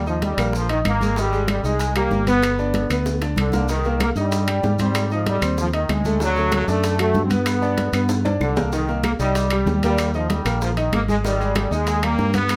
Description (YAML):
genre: latin, salsa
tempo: 191 BPM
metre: 4/4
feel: straight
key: C minor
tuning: A4 = 440 Hz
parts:
  - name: bright trombone section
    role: melody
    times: 0.0-12.6 s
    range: D3 to C4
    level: -26 LUFS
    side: equal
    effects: none
  - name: fingered electric bass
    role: bass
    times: 0.0-12.6 s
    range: G1 to Ab2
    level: -25 LUFS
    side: equal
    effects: none
  - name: bright upright piano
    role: accompaniment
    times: 0.1-12.6 s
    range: D3 to Eb5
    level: -28 LUFS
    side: equal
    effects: none
  - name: bongos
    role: percussion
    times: 0.1-12.6 s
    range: none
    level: -35 LUFS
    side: equal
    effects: none
  - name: congas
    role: percussion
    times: 0.1-12.6 s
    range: none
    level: -30 LUFS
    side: equal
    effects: none
  - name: maracas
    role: percussion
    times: 0.1-12.6 s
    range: none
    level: -41 LUFS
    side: equal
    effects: none
  - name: timbales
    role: percussion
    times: 0.2-12.6 s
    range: none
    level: -31 LUFS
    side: equal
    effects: none
  - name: claves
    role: percussion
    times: 0.4-12.6 s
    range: none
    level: -35 LUFS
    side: equal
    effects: none
room: light reverb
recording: none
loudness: -20 LUFS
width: mono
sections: 0.0-8.7 A section; 8.7-12.6 A section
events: drum fill 3.1-3.7, 8.1-8.7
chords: 0.0 Eb; 1.2 Abmaj7; 2.4 G; 3.7 Cm7; 5.0 Ab; 6.2 D; 7.5 G; 8.7 Cm7; 10.0 Eb; 11.2 Ab5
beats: 0.23 0.54 0.86 | 1.17 1.49 1.80 2.12 | 2.43 2.75 3.06 3.38 | 3.69 4.01 4.32 4.64 | 4.95 5.26 5.58 5.89 | 6.21 6.52 6.84 7.15 | 7.47 7.78 8.10 8.41 | 8.72 9.04 9.35 9.67 | 9.98 10.30 10.61 10.93 | 11.24 11.56 11.87 12.19 | 12.50